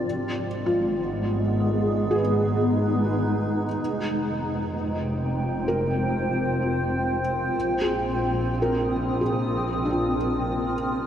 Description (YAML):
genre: ambient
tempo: 64 BPM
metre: 4/4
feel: straight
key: unclear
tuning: A4 = 440 Hz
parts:
  - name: granular cloud pad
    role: sustained chords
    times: 0.0-11.1 s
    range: Ab3 to Eb6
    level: -25 LUFS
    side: equal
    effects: built-in reverb
  - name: felt-muted upright piano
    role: arpeggios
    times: 0.0-11.1 s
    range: D4 to Cb5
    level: -29 LUFS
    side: equal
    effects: tape echo
  - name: rich studio double bass section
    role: bass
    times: 0.0-11.1 s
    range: F1 to Bb1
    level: -29 LUFS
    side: equal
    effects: none
room: wet huge ambient reverb, RT60 8.0 s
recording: none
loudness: -22 LUFS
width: side -9 dB against mid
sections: 0.0-11.1 A section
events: filter sweep on ambient pad 0.0-11.1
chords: 0.0 Abm; 3.8 Fmadd9; 7.5 Bbsus4